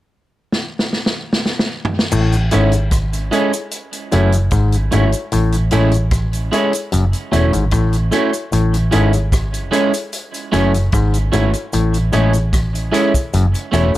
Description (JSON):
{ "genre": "roots reggae", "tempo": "75 BPM", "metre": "4/4", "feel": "straight", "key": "unclear", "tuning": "A4 = 440 Hz", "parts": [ { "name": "vintage drum kit", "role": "drums", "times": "0.5-14.0 s", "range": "crash cymbal, hi-hat, kick drum, rim click, snare drum, toms", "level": "-21 LUFS", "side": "equal", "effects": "tape echo" }, { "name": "auto-wah clav", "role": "riff", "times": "2.1-14.0 s", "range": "E2 to A2", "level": "-20 LUFS", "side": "left 3 dB", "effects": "none" }, { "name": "vintage muted fingered electric bass", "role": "bass", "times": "2.1-14.0 s", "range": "E1 to A1", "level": "-16 LUFS", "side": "equal", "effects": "none" }, { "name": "cabasa", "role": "percussion", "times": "2.1-14.0 s", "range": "none", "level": "-31 LUFS", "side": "right 7 dB", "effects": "none" }, { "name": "electric guitar at the edge of break-up", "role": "accompaniment", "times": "2.5-13.9 s", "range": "G#3 to E4", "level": "-21 LUFS", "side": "right 5 dB", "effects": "wide subtle chorus, tape echo" }, { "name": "dark upright piano", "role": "stabs", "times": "2.5-13.9 s", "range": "E4 to C#5", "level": "-20 LUFS", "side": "left 3 dB", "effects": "none" } ], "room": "small room reverb", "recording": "none", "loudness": "-14 LUFS", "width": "side -15 dB against mid", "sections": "0.0-2.1 A section; 2.1-14.0 B section", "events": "drum fill 0.5-2.1", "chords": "0.0 N.C.; 2.1 Amaj7; 3.7 F#m7; 5.3 Amaj7; 6.9 F#m7; 8.5 Amaj7; 10.1 F#m7; 11.7 Amaj7; 13.3 F#m7" }